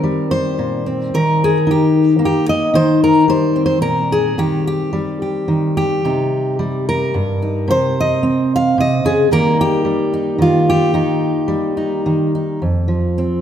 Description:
folk, solo fingerstyle acoustic guitar; 110 BPM; 3/4; rubato; A4 = 442 Hz
fingerpicked steel-string acoustic guitar; solo; 0.0-13.4 s; F2 to F5; -14 LUFS; equal
wet scoring stage reverb, RT60 1.5 s; recorded in a church or concert hall; -14 LUFS; side -9 dB against mid
0.0-12.6 A section
0.0 Eb6; 6.0 Cm; 9.3 Eb; 12.6 F5

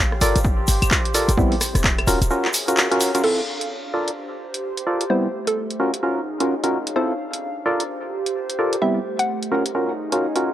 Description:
UK garage, two-step garage; 129 BPM; 4/4; swing 61% on 16ths; D minor; A4 = 439 Hz
short 808-style bass; bass; 0.0-2.3 s; Eb1 to A1; -21 LUFS; equal
warbly tape-like pad; texture; 0.0-10.5 s; A3 to F5; -28 LUFS; right 1 dB; chorus, built-in reverb, sidechain pumping
garage drum kit; drums; 0.1-10.4 s; claves, crash cymbal, handclaps, hi-hat, rim click; -23 LUFS; equal
percussive organ stab; stabs; 0.2-10.5 s; G3 to D5; -22 LUFS; equal; chorus, tape echo
egg shaker; percussion; 0.2-3.2 s; -28 LUFS; left 1 dB
electronic kick drum; drums; 0.4-2.0 s; -23 LUFS; equal
hollow square pluck; melody; 3.2-9.3 s; A4 to F#5; -26 LUFS; equal; chorus, vintage 12-bit sampler grit, tape echo
light reverb; dry, gritty hardware recording; -19 LUFS; side -12 dB against mid
0.0-3.2 A section; 3.2-10.5 B section
filter sweep on synth stab 0.0-3.2; band accent 2.8
0.2 Gm7; 1.4 Am7; 2.1 Ebm7; 3.2 Dm7; 3.9 Gm7; 5.1 Am7; 5.8 Ebm7; 7.0 Dm7; 7.7 Gm7; 8.8 Am7; 9.5 Ebm7

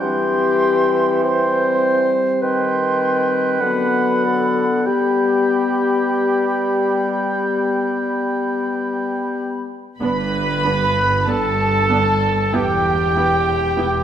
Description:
classical, slow romantic movement for symphony orchestra; 45-52 BPM; 4/4; rubato; G major; A4 = 440 Hz
clear oboe; second line; 0.0-9.7 s; F#5 to G5; -25 LUFS; right 1 dB
mellow clarinet; second line; 0.0-8.7 s; G4 to C5; -20 LUFS; left 2 dB
mellow silver concert flute; second line; 0.0-9.6 s; B5 to C6; -25 LUFS; right 1 dB
warm bassoon; accompaniment; 0.0-9.7 s; D3 to G3; -23 LUFS; right 2 dB
dark French horn section; sustained chords; 0.0-9.7 s; F#3 to C4; -23 LUFS; left 5 dB
muted symphonic violin section; melody; 10.0-14.0 s; G5 to B5; -27 LUFS; left 1 dB
muted symphonic violin section; second line; 10.0-14.0 s; G5 to B5; -25 LUFS; equal
muted symphonic viola section; accompaniment; 10.0-13.9 s; B3 to E4; -26 LUFS; right 2 dB
warm trumpet section; stabs; 10.0-14.0 s; G4 to B4; -18 LUFS; right 1 dB
muted chamber cello section; bass; 10.0-14.0 s; E2 to G2; -24 LUFS; right 2 dB
muted studio double bass section; bass; 10.0-14.0 s; E1 to G1; -24 LUFS; right 3 dB
wet scoring stage reverb, RT60 1.8 s; -16 LUFS; side -9 dB against mid
0.0-10.0 A section; 10.0-14.0 B section
0.0 C/E; 2.4 Cm/Eb; 3.6 D6; 4.9 G; 12.5 Em

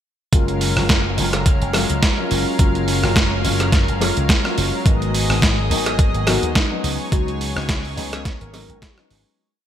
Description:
nu-disco, nu disco; 106 BPM; 4/4; swing 55% on 16ths; F# major; A4 = 440 Hz
dark concert grand piano; accompaniment; 0.3-9.4 s; F#3 to E#4; -24 LUFS; left 3 dB; lush chorus, sidechain pumping, ping-pong delay
lush unison pad; sustained chords; 0.3-9.4 s; F#3 to E#5; -26 LUFS; equal; chorus, sidechain pumping
slap bass with an envelope filter; bass; 0.3-9.2 s; F#1 to D#2; -23 LUFS; equal
dusty soul sampler-style drum kit; drums; 0.3-9.2 s; hi-hat, rim click, snare drum; -22 LUFS; right 1 dB; overdrive, gated reverb
electronic kick drum; drums; 0.3-8.9 s; -17 LUFS; equal; overdrive
cowbell; percussion; 1.3-8.7 s; -28 LUFS; right 3 dB
soft octave-layered synth lead; melody; 6.3-9.0 s; D#4 to A#4; -29 LUFS; left 2 dB; chorus, vintage 12-bit sampler grit, digital delay
light reverb; bright 1980s-style digital production; -16 LUFS; side -10 dB against mid
0.3-9.4 drop
drop 0.3-9.4; fade-out 6.4-9.4
0.3 F#maj7; 4.9 G#m7; 6.8 C#7sus4

